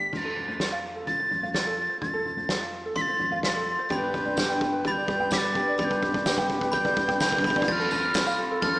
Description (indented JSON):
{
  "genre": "indie folk with a building arrangement",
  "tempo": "127 BPM",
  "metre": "4/4",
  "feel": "straight",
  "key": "F major",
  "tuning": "A4 = 441 Hz",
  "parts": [
    { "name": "breathy mellow tin whistle", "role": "melody", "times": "0.0-8.8 s", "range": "F6 to B6", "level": "-28 LUFS", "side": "equal", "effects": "slapback echo" },
    { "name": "ukulele", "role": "arpeggios", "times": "0.1-8.8 s", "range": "F4 to G5", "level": "-31 LUFS", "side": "right 1 dB", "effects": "slapback echo" },
    { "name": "fingered electric bass", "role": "bass", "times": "0.1-8.8 s", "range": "C2 to G2", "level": "-41 LUFS", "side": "equal", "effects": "none" },
    { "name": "soft-mallet drum kit", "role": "drums", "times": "0.1-8.7 s", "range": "crash cymbal, kick drum, snare drum, toms", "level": "-29 LUFS", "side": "equal", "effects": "none" },
    { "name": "glockenspiel with brass mallets", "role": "second line", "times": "3.0-8.8 s", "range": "B5 to A6", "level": "-32 LUFS", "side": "left 1 dB", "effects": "none" },
    { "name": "picked twelve-string acoustic guitar", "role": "accompaniment", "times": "3.9-8.8 s", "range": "G2 to B4", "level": "-30 LUFS", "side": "left 1 dB", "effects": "slapback echo" },
    { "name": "tambourine", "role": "percussion", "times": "4.4-8.8 s", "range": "none", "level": "-39 LUFS", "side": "right 1 dB", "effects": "none" },
    { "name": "group handclap", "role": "percussion", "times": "8.2-8.3 s", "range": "none", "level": "-34 LUFS", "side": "right 1 dB", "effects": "none" }
  ],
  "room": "wet lush hall reverb, RT60 1.9 s, studio reverb",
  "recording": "big arena sound, small speaker sound",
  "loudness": "-23 LUFS",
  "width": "side -20 dB against mid",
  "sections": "0.1-7.7 A section; 7.7-8.8 B section",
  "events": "build-up 0.1-7.7; drum fill 0.1-7.7",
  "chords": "0.1 F; 3.9 G; 7.7 F"
}